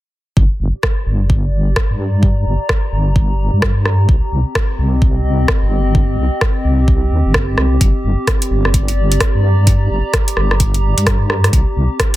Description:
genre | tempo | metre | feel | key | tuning
UK garage, two-step garage | 129 BPM | 4/4 | swing 62% on 16ths | G minor | A4 = 438 Hz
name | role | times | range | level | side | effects
deep soft wobble bass | bass | 0.4-11.9 s | G1 to G2 | -14 LUFS | equal | chorus
electronic kick drum | drums | 0.4-12.1 s | none | -15 LUFS | equal | none
warbly tape-like pad | texture | 1.1-12.2 s | C4 to Bb5 | -22 LUFS | equal | chorus, built-in reverb, sidechain pumping
garage drum kit | drums | 0.8-12.2 s | hi-hat, rim click | -19 LUFS | equal | soft clipping on snare
room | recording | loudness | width
little or no reverb | dense, heavily limited modern master | -12 LUFS | side -16 dB against mid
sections
0.4-12.2 A section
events
none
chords
0.4 Gm; 4.1 Cm7; 7.8 Gm; 11.5 C7(no3)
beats
| 0.37 0.83 1.30 1.76 | 2.23 2.69 3.16 3.62 | 4.09 4.55 5.02 5.48 | 5.95 6.42 6.88 7.34 | 7.81 8.28 8.74 9.21 | 9.67 10.13 10.60 11.07 | 11.53 12.00

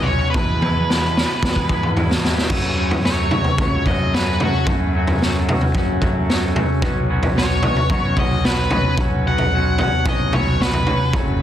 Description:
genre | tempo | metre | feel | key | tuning
indie rock | 111 BPM | 4/4 | straight | unclear | A4 = 439 Hz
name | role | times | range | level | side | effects
octave-fuzz lead guitar | melody | 0.0-11.1 s | F#4 to F#5 | -24 LUFS | equal | distortion, digital delay
raw garage guitar | riff | 0.0-11.4 s | E2 to F#4 | -24 LUFS | left 1 dB | overdrive
fuzz fingered electric bass | bass | 0.0-11.4 s | F#1 to F#2 | -23 LUFS | equal | overdrive
raw garage drum kit | drums | 0.3-11.3 s | crash cymbal, kick drum, snare drum, toms | -19 LUFS | equal | none
room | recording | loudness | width
light reverb | dense, heavily limited modern master, faint mains hum | -16 LUFS | side -11 dB against mid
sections
0.0-2.5 A section; 2.5-11.4 B section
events
drum fill 0.3-2.5; lead electric guitar solo 2.5-11.4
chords
0.3 E; 2.5 F#m; 6.8 Bsus2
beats
| 0.34 0.88 1.42 1.96 | 2.50 3.04 3.58 4.13 | 4.67 5.21 5.75 6.29 | 6.83 7.37 7.91 8.45 | 8.98 9.52 10.06 10.60 | 11.14

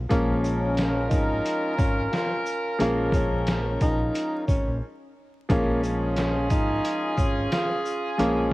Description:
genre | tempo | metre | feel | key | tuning
hip hop, boom-bap hip-hop | 89 BPM | 4/4 | swing 55% on 16ths | Bb minor | A4 = 440 Hz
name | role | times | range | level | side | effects
deep dub fingered electric bass | bass | 0.0-8.5 s | Ab1 to Bb1 | -30 LUFS | equal | none
breathy tenor saxophone | melody | 0.1-8.5 s | Bb3 to F4 | -29 LUFS | equal | high-pass filter, low-pass filter, cassette tape
dark baby grand piano | accompaniment | 0.1-8.5 s | F3 to Db4 | -28 LUFS | left 1 dB | high-pass filter, low-pass filter, cassette tape
warm horn section | stabs | 0.1-8.5 s | Db4 to Bb4 | -30 LUFS | equal | high-pass filter, low-pass filter, cassette tape, analog delay
trip hop sampler-style drum kit | drums | 0.1-8.4 s | hi-hat, kick drum, shaker, snare drum | -26 LUFS | equal | cassette tape
sleigh bells | percussion | 0.1-8.4 s | none | -50 LUFS | right 4 dB | none
room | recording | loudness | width
small room ambience | home recording on cassette, vinyl crackle | -22 LUFS | side -19 dB against mid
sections
0.0-8.5 A section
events
break 4.8-5.5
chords
0.0 Bbm7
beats
| 0.10 0.78 1.45 2.12 | 2.80 3.47 4.15 4.82 | 5.50 6.17 6.84 7.52 | 8.19

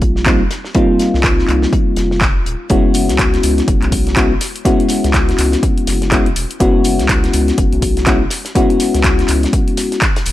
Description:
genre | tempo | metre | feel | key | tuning
deep house | 123 BPM | 4/4 | swing 60% on 16ths | unclear | A4 = 440 Hz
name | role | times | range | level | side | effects
mellow FM electric piano | stabs | 0.0-10.0 s | G3 to Gb4 | -15 LUFS | left 2 dB | chorus, tape echo
round analog bass | bass | 0.0-10.3 s | Eb1 to Db2 | -18 LUFS | equal | sidechain pumping
damped 70s drum kit | drums | 0.0-10.3 s | hi-hat, snare drum | -28 LUFS | left 1 dB | high-pass filter on hats, high-pass filter on snare, high-pass filter on room
electronic kick drum | drums | 0.0-10.1 s | none | -16 LUFS | equal | overdrive
punchy analog drum machine | drums | 0.3-10.3 s | handclaps, hi-hat | -20 LUFS | equal | overdrive
room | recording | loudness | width
small room reverb | dry, gritty hardware recording, cassette tape | -12 LUFS | side -14 dB against mid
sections
0.0-10.3 A section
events
none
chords
0.0 F9sus4; 2.7 Gb9sus4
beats
0.26 | 0.75 1.24 1.73 2.21 | 2.70 3.19 3.68 4.17 | 4.65 5.14 5.63 6.12 | 6.61 7.09 7.58 8.07 | 8.56 9.04 9.53 10.02

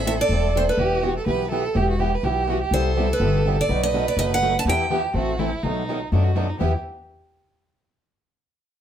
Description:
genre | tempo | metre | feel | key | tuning
acoustic string swing (jazz manouche) | 247 BPM | 4/4 | swing 55% on 8ths | E minor | A4 = 439 Hz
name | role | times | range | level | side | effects
picked steel-string acoustic guitar | melody | 0.0-5.1 s | B4 to A5 | -23 LUFS | right 1 dB | none
warm violin | second line | 0.0-6.7 s | D4 to B4 | -27 LUFS | right 5 dB | none
upright bass | bass | 0.0-6.7 s | E1 to F#2 | -24 LUFS | left 1 dB | none
picked plugged-in steel-string acoustic guitar | accompaniment | 0.1-6.7 s | B2 to A4 | -28 LUFS | left 4 dB | none
picked swing-style acoustic guitar | accompaniment | 0.1-6.7 s | B2 to B4 | -29 LUFS | right 4 dB | none
room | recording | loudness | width
moderate studio reverb, RT60 0.8 s | band playing live in one room | -19 LUFS | side -9 dB against mid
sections
0.0-6.6 A section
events
none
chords
0.0 Am; 0.8 Em; 2.7 Cmaj7; 3.7 B7; 4.7 Em; 5.2 Am; 5.6 B7; 6.6 Em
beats
0.06 0.30 0.55 | 0.79 1.03 1.27 1.51 | 1.76 2.00 2.24 2.48 | 2.72 2.97 3.21 3.45 | 3.69 3.94 4.18 4.42 | 4.67 4.91 5.15 5.39 | 5.64 5.88 6.12 6.37 | 6.61

